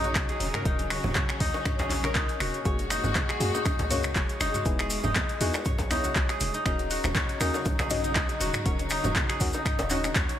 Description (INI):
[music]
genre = afro house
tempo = 120 BPM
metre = 4/4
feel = swing 54% on 16ths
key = Eb phrygian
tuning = A4 = 440 Hz
[part]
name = warm studio string section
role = sustained chords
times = 0.0-10.4 s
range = Bb2 to Gb4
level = -36 LUFS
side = left 1 dB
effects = vintage 12-bit sampler grit, sidechain pumping
[part]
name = kora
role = arpeggios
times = 0.0-10.4 s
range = Eb4 to Db5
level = -32 LUFS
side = equal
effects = sidechain pumping, tape echo
[part]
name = warm 808-style bass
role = bass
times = 0.0-10.3 s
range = Eb1 to Gb2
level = -33 LUFS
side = equal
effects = sidechain pumping
[part]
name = afro-pop drum kit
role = drums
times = 0.0-10.4 s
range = finger snaps, handclaps, hi-hat, toms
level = -30 LUFS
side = equal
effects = none
[part]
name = congas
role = percussion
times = 0.0-10.3 s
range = none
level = -37 LUFS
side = right 3 dB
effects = none
[part]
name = electronic kick drum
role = drums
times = 0.2-10.3 s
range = none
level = -29 LUFS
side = equal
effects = none
[part]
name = djembe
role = percussion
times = 0.4-10.1 s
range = none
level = -37 LUFS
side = left 1 dB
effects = none
[part]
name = deep mellow chord stab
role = stabs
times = 2.7-10.4 s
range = Bb3 to Eb5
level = -34 LUFS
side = left 3 dB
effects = chorus, sidechain pumping, tape echo
[part]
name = maracas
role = percussion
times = 2.7-10.3 s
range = none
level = -38 LUFS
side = right 2 dB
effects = none
[sound]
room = light reverb, studio ambience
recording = none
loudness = -24 LUFS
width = side -10 dB against mid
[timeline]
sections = 0.0-10.4 A section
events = none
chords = 0.0 Ebm7; 2.7 Gbadd9; 4.7 Emaj7; 6.7 Ebm7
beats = 0.15 | 0.66 1.16 1.66 2.15 | 2.65 3.15 3.65 4.16 | 4.66 5.16 5.66 6.16 | 6.66 7.16 7.66 8.15 | 8.65 9.15 9.65 10.15